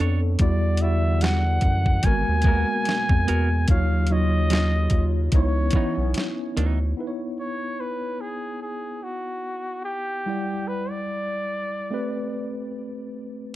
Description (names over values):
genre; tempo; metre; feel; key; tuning
R&B, neo-soul; 73 BPM; 4/4; swing 54% on 16ths; unclear; A4 = 440 Hz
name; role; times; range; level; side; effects
semi-hollow electric guitar; second line; 0.0-6.8 s; E3 to C#5; -30 LUFS; right 5 dB; none
tine electric piano; accompaniment; 0.0-13.6 s; F#3 to F#5; -29 LUFS; left 1 dB; overdrive, fast stereo tremolo
round analog bass; bass; 0.0-6.9 s; G#1 to F#2; -22 LUFS; equal; none
clear flugelhorn; melody; 0.4-12.5 s; F#4 to G#5; -28 LUFS; equal; none
hollow soft pad; sustained chords; 0.4-7.0 s; B2 to F#5; -34 LUFS; left 1 dB; chorus
boom bap sampler-style drum kit; drums; 0.4-6.8 s; hi-hat, kick drum, snare drum; -22 LUFS; equal; none
room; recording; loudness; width
light reverb; dark, warm production; -21 LUFS; side -15 dB against mid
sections
0.0-7.0 A section; 7.0-13.6 B section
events
none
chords
0.4 Em9; 2.0 G#m9; 3.7 D#m9; 5.3 C#m9; 10.3 Em9; 11.9 Am9